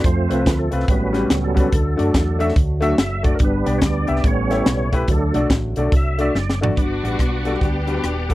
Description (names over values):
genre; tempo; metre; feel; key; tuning
uptempo gospel; 143 BPM; 4/4; swing 62% on 8ths; G major; A4 = 443 Hz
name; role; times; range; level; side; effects
mellow French horn section; sustained chords; 0.0-8.3 s; F3 to G4; -33 LUFS; right 2 dB; none
tonewheel organ; sustained chords; 0.0-8.3 s; F3 to D6; -24 LUFS; right 2 dB; fast rotary speaker, chorus vibrato
hollow-body short-scale fingered electric bass; bass; 0.0-8.3 s; Eb1 to F#2; -22 LUFS; equal; none
crisp fusion drum kit; drums; 0.0-8.3 s; hi-hat, kick drum, rim click, snare drum, toms; -20 LUFS; equal; none
warm concert grand piano; accompaniment; 0.3-8.3 s; G2 to E5; -23 LUFS; left 3 dB; none
warm studio string section; melody; 6.8-8.3 s; B3 to G4; -25 LUFS; left 2 dB; none
room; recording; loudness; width
little or no reverb; dry, close 1970s-style studio recording; -16 LUFS; side -16 dB against mid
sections
0.0-6.8 A section; 6.8-8.3 B section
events
tonewheel organ solo 0.0-6.8; drum fill 6.4-6.8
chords
0.0 F; 0.9 A13; 1.7 D; 3.4 G; 4.2 A7; 5.1 D; 6.8 Gmaj7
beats
| 0.05 0.47 0.89 1.30 | 1.73 2.15 2.56 2.98 | 3.41 3.83 4.25 4.67 | 5.09 5.51 5.93 6.35 | 6.77 7.20 7.62 8.04